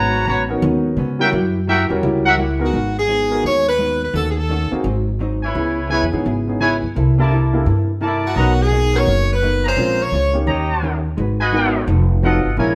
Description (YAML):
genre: jazz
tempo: 171 BPM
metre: 4/4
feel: swing 64% on 8ths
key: G# minor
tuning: A4 = 440 Hz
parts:
  - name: hollow-body jazz guitar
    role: accompaniment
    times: 0.0-12.8 s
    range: G#2 to B4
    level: -27 LUFS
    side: equal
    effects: none
  - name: clear trumpet section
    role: stabs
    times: 0.0-2.3, 5.4-12.7 s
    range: C#4 to A#5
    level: -22 LUFS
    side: equal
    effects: none
  - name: upright bass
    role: bass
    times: 0.0-12.8 s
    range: F1 to C#3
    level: -22 LUFS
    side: equal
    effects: none
  - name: warm concert grand piano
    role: accompaniment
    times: 0.5-12.8 s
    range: Gb3 to C#5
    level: -25 LUFS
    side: equal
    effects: none
  - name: clear saxophone section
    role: melody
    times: 2.6-4.7, 8.3-10.4 s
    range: F#4 to C#5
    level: -21 LUFS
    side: equal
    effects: none
room: moderate stone room reverb, RT60 1.0 s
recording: band playing live in one room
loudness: -18 LUFS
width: mono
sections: 0.0-2.7 A section; 2.7-12.8 B section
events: none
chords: 0.0 G#m11; 1.3 F#7b9; 2.7 G#m7; 4.1 D#m7b5; 4.8 G#7; 5.5 C#m7; 7.0 C13; 8.4 Bmaj7; 9.8 A#m7; 10.5 D#7; 11.2 G#m7; 11.9 F7b9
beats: 0.27 0.63 0.98 | 1.33 1.68 2.03 2.38 | 2.73 3.09 3.44 3.79 | 4.14 4.49 4.84 5.20 | 5.55 5.90 6.25 6.60 | 6.96 7.31 7.66 8.01 | 8.36 8.71 9.06 9.42 | 9.77 10.12 10.47 10.82 | 11.18 11.53 11.88 12.23 | 12.58